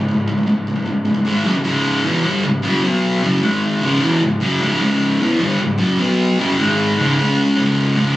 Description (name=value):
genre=metal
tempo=152 BPM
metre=4/4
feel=straight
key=C# minor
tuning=A4 = 440 Hz
part: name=sludgy distorted guitar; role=solo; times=0.0-8.2 s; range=C#2 to C#4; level=-14 LUFS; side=equal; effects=overdrive
room=little or no reverb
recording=recorded on a phone in the room, studio reverb, compression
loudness=-14 LUFS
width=side -15 dB against mid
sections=0.0-1.7 A section; 1.7-8.2 B section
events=half time 1.7-8.2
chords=0.0 C#5; 1.3 G#5; 1.5 F#5; 1.7 C#m; 2.8 B5; 3.2 F#5; 3.4 G#5; 3.8 C#m; 6.0 B5; 6.4 F#5; 6.6 G#5; 7.0 C#5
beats=| 0.09 0.48 0.87 1.27 | 1.66 2.05 2.45 2.84 | 3.23 3.63 4.02 4.42 | 4.81 5.20 5.59 5.99 | 6.38 6.78 7.17 7.56 | 7.96